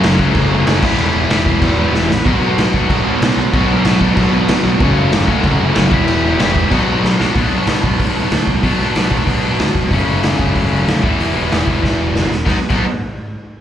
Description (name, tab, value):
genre	punk rock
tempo	188 BPM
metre	4/4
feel	straight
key	B minor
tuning	A4 = 440 Hz
part	cranked stack guitar	riff	0.0-12.8 s	F#2 to G4	-17 LUFS	left 6 dB	overdrive, slapback echo
part	fuzz guitar	riff	0.0-7.4 s	E2 to B3	-20 LUFS	right 1 dB	distortion
part	tight distorted guitar	riff	0.0-12.8 s	E2 to B3	-21 LUFS	right 10 dB	distortion, slapback echo
part	fuzz picked electric bass	bass	0.0-12.9 s	E1 to D2	-19 LUFS	equal	overdrive
part	raw garage drum kit	drums	0.0-12.8 s	crash cymbal, hi-hat, kick drum, snare drum	-17 LUFS	equal	none
room	small room reverb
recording	live gig heard through the venue's PA, club reverb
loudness	-12 LUFS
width	side -10 dB against mid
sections	0.0-7.4 A section; 7.4-12.5 B section; 12.5-13.6 C section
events	drum fill 1.9-2.3, 7.0-7.4, 11.8-12.5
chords	0.0 F#m; 0.8 Em; 2.3 Bm; 4.8 F#m; 5.9 Em; 6.7 Bm; 9.9 F#m; 11.0 Em; 12.5 B